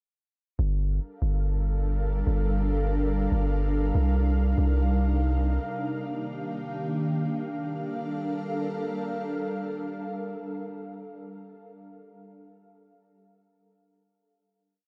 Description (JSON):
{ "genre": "hip hop", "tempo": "free time", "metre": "none", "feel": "none", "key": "G minor", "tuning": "A4 = 439 Hz", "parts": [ { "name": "ethereal airy pad", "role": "sustained chords", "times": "1.3-11.4 s", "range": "C3 to F5", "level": "-33 LUFS", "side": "equal", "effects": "ensemble chorus, built-in reverb" }, { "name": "long sustained 808-style bass", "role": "bass", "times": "0.6-5.6 s", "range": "G1 to C2", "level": "-26 LUFS", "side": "equal", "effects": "none" } ], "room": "little or no reverb", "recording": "dry, gritty hardware recording, cassette tape", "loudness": "-28 LUFS", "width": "mono", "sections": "0.6-7.3 verse; 7.3-10.7 final chord", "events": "none", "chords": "0.6 Gm9; 3.9 Cm11; 5.6 Ebmaj9; 7.3 Gm9", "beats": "free time" }